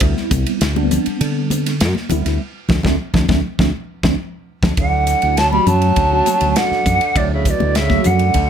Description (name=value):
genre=electric jazz fusion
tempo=101 BPM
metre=4/4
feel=straight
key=D major from 4.8 s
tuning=A4 = 439 Hz
part: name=mellow tine electric piano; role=accompaniment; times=0.0-8.4 s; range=F#3 to F#4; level=-22 LUFS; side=right 1 dB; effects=medium stereo tremolo, phaser
part: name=fingered electric bass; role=bass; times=0.0-8.5 s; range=C2 to D3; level=-19 LUFS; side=equal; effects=none
part: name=modern studio drum kit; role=drums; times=0.0-8.5 s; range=hi-hat, kick drum, ride cymbal, snare drum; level=-21 LUFS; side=equal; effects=none
part: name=congas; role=percussion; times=0.3-8.2 s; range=none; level=-22 LUFS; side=left 1 dB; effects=none
part: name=wooden flute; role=melody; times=4.8-8.5 s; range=D5 to B5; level=-17 LUFS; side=equal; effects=slapback echo
part: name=warm tenor saxophone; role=second line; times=4.8-8.5 s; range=A2 to G3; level=-23 LUFS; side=right 8 dB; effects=none
room=light reverb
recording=none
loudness=-14 LUFS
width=side -8 dB against mid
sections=0.0-4.8 A section; 4.8-8.5 B section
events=band accent 2.4-4.8; drum fill 4.2-4.8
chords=0.0 D13sus4; 4.8 Dmaj9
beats=| 0.02 0.61 1.21 1.80 | 2.40 2.99 3.59 4.18 | 4.78 5.37 5.97 6.56 | 7.16 7.75 8.35